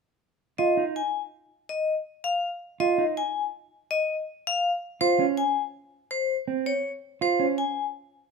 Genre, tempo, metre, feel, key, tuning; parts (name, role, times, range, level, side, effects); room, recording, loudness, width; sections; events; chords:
classical, minimalist pattern music; 163 BPM; 6/4; straight; A4 = 441 Hz
vibraphone with hard mallets; melody; 0.6-7.8 s; C5 to Ab5; -26 LUFS; left 5 dB
mellow electric guitar; arpeggios; 0.6-7.6 s; C4 to F4; -25 LUFS; right 9 dB
light reverb; close, detailed microphones; -24 LUFS; side -4 dB against mid
0.6-8.3 A section
0.6 N.C.; 5.0 Dbmaj7